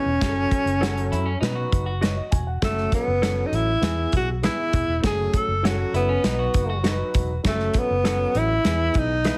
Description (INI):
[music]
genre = uptempo 1960s-style soul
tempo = 100 BPM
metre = 4/4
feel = straight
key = F# dorian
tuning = A4 = 440 Hz
[part]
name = breathy tenor saxophone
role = melody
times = 0.0-9.4 s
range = A3 to A4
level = -26 LUFS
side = equal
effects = none
[part]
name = dark upright piano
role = accompaniment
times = 0.0-9.4 s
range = E3 to G#5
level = -33 LUFS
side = equal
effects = none
[part]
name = vintage muted fingered electric bass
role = bass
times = 0.1-9.3 s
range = E1 to B2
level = -28 LUFS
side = equal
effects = none
[part]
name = natural country drum kit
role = drums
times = 0.2-9.4 s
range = hi-hat, kick drum, snare drum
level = -27 LUFS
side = equal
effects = none
[part]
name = mellow electric guitar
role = stabs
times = 0.8-9.4 s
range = F#4 to F#5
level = -35 LUFS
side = equal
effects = none
[part]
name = electric guitar through a small old amp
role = riff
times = 1.1-7.4 s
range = C#4 to F#4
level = -34 LUFS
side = equal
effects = none
[sound]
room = light reverb, small room reverb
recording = heavily compressed radio sound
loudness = -23 LUFS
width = mono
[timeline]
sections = 0.0-9.4 A section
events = none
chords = 0.2 F#m; 1.4 B; 2.6 F#m; 3.8 E; 5.0 F#m; 6.2 B; 7.4 F#m; 8.7 E